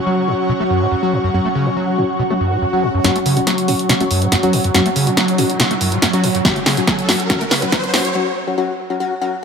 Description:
driving peak-time techno; 141 BPM; 4/4; straight; A4 = 441 Hz
wavetable chord stab; stabs; 0.0-9.4 s; F#3 to F#4; -21 LUFS; left 3 dB; sidechain pumping, dub echo
swarming drone; drone; 0.0-8.2 s; F#3; -24 LUFS; right 2 dB; built-in reverb, sidechain pumping
airy breathy pad; texture; 0.0-8.2 s; C#4 to C#6; -22 LUFS; right 1 dB; chorus, sidechain pumping
overdriven acid bass; riff; 0.1-8.0 s; F#2 to A3; -20 LUFS; equal; distortion, analog chorus, sidechain pumping
swell and riser; sound effects; 2.4-8.2 s; -26 LUFS; equal
punchy analog drum machine; drums; 3.0-8.1 s; hi-hat, snare drum; -18 LUFS; equal; sidechain pumping on hats, low-pass filter on hats, sidechain pumping on cymbals, low-pass filter on cymbals, sidechain pumping on perc, low-pass filter on perc, low-pass filter on snare, low-pass filter on room
electronic kick drum; drums; 6.5-7.8 s; -20 LUFS; equal; overdrive
moderate lush hall reverb, RT60 2.4 s; high-pass filter; -14 LUFS; side -6 dB against mid
0.0-3.0 A section; 3.0-9.4 B section
swell 2.4-3.0; build-up 3.0-9.4; drum fill 3.0-8.2; riser 3.0-8.2; filter sweep on acid bass 3.0-9.4; break 8.2-9.4
0.0 F#5

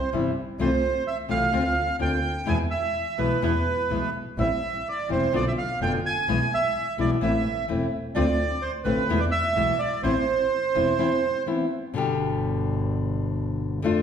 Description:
tango; 127 BPM; 4/4; rubato; A minor; A4 = 444 Hz
bandoneon; melody; 0.0-11.4 s; B4 to G#5; -25 LUFS; right 4 dB
nylon-string guitar; accompaniment; 0.1-14.0 s; B2 to G4; -26 LUFS; left 3 dB
warm double bass; bass; 0.1-14.0 s; E1 to F2; -29 LUFS; equal
wet recital hall reverb, RT60 1.4 s; recorded in a church or concert hall; -22 LUFS; side -8 dB against mid
0.0-12.0 A section; 12.0-14.0 B section
break 11.0-12.0
0.0 C; 0.6 Fmaj7/C; 1.5 Bbadd9/D; 2.5 E; 4.4 Am7; 5.3 Bdim; 6.3 E/B; 7.2 Am; 8.2 Dm7; 9.1 E; 10.0 Amadd9 (rootless); 12.0 G

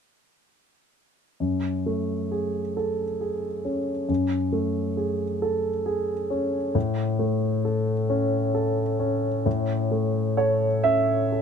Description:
classical; 44 BPM (dotted quarters); 6/8; rubato; F# minor; A4 = 440 Hz
dark grand piano; accompaniment; 1.4-11.4 s; F#2 to E5; -23 LUFS; equal
little or no reverb; close, detailed microphones; -23 LUFS; side -6 dB against mid
1.4-11.4 A section
1.4 F#madd9; 6.8 A

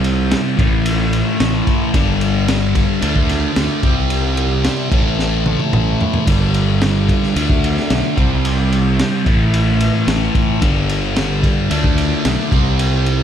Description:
psychedelic rock; 111 BPM; 4/4; straight; A4 = 440 Hz
fuzz guitar; riff; 0.0-13.2 s; G2 to D4; -17 LUFS; left 1 dB; distortion, phaser
fuzz fingered electric bass; bass; 0.0-13.2 s; G1 to D2; -19 LUFS; equal; overdrive
crunchy breakbeat drum kit; drums; 0.0-13.2 s; kick drum, ride cymbal, snare drum, toms; -19 LUFS; equal
small room ambience; -14 LUFS; side -9 dB against mid
0.0-13.2 A section
drum fill 5.2-6.3
0.0 C5; 0.6 A5; 1.9 G5; 3.0 D5; 3.8 C5; 4.9 A5; 6.3 G5; 7.4 D5; 8.2 C5; 9.3 A5; 10.6 G5; 11.7 D5; 12.5 C5

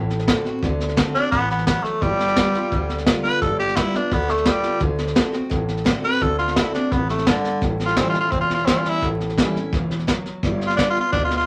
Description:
rockabilly; 171 BPM; 4/4; straight; A4 = 440 Hz
picked steel-string acoustic guitar; accompaniment; 0.0-11.5 s; E2 to F#4; -28 LUFS; equal
upright bass; bass; 0.0-11.5 s; E1 to D2; -30 LUFS; equal
vintage brush drum kit; drums; 0.1-11.4 s; hi-hat, kick drum, snare drum; -25 LUFS; equal
raspy tenor saxophone; melody; 1.1-11.5 s; D3 to B4; -24 LUFS; equal
wet club reverb, RT60 0.5 s; vinyl crackle; -21 LUFS; mono
0.0-11.5 A section
0.0 D7; 2.0 G7; 4.8 D7; 7.6 A7; 10.4 G7

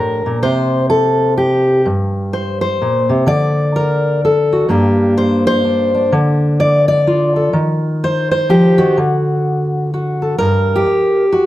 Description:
folk, solo fingerstyle acoustic guitar; 126 BPM; 3/4; swing 61% on 8ths; A4 = 439 Hz
fingerpicked steel-string acoustic guitar; solo; 0.0-11.5 s; G2 to D5; -12 LUFS; equal
light reverb; -12 LUFS; side -14 dB against mid
0.0-10.4 A section; 10.4-11.5 B section
0.4 N.C.; 1.9 Gm; 3.3 D5; 4.7 Gm; 6.1 Dm; 7.5 Cm/Eb; 9.0 D; 10.4 N.C.

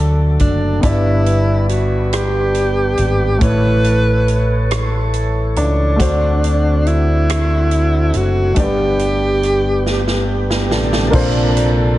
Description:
slow gospel; 46 BPM (dotted quarters); 6/8; straight; G major; A4 = 443 Hz
breathy alto saxophone; melody; 0.0-10.3 s; D4 to B4; -19 LUFS; right 1 dB; analog delay
warm concert grand piano; accompaniment; 0.0-12.0 s; G2 to D5; -21 LUFS; left 1 dB
tonewheel organ; sustained chords; 0.0-12.0 s; C3 to C#5; -22 LUFS; right 1 dB; slow rotary speaker
fingered electric bass; bass; 0.0-12.0 s; F#1 to D2; -17 LUFS; equal
swinging big-band drum kit; drums; 0.4-11.8 s; crash cymbal, hi-hat, kick drum, rim click, snare drum; -21 LUFS; equal
studio ambience; echo-heavy mix, nothing above 10.9 kHz; -13 LUFS; side -15 dB against mid
0.0-11.1 A section
drum fill 9.9-11.1
0.0 D; 0.8 G; 3.4 A; 6.0 D7; 8.6 G; 11.1 Bbmaj9

